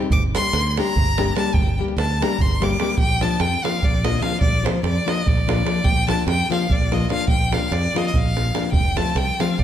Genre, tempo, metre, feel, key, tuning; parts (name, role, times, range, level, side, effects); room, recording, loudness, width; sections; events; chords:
balkan folk, Balkan wedding band; 293 BPM (eighths); 7/8; straight; Bb major; A4 = 440 Hz
nylon-string guitar; accompaniment; 0.0-9.6 s; F3 to G4; -25 LUFS; left 5 dB
davul; percussion; 0.0-9.6 s; -22 LUFS; right 2 dB
clear violin; melody; 0.1-9.6 s; C5 to D6; -24 LUFS; left 1 dB
modern bright fingered electric bass; bass; 0.1-9.6 s; F1 to F2; -24 LUFS; equal
moderate recital hall reverb, RT60 1.7 s; -18 LUFS; side -10 dB against mid
0.0-3.0 A section; 3.0-9.6 B section
violin solo 0.0-3.0
0.1 Gm; 3.0 Bb; 8.7 F